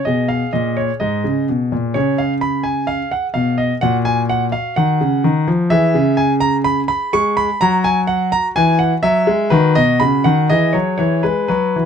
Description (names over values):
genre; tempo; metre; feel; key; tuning
classical-period piano sonatina; 126 BPM; 4/4; rubato; F# major; A4 = 440 Hz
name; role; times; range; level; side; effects
clear grand piano; solo; 0.0-11.9 s; G#2 to C#6; -14 LUFS; equal; none
room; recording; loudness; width
little or no reverb; close, detailed microphones; -14 LUFS; side -7 dB against mid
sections
0.0-11.9 A section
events
none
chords
0.1 G#m; 2.0 C#5; 3.8 F#/A#; 5.7 C#m; 7.6 Eadd9; 9.5 B; 10.5 Emaj13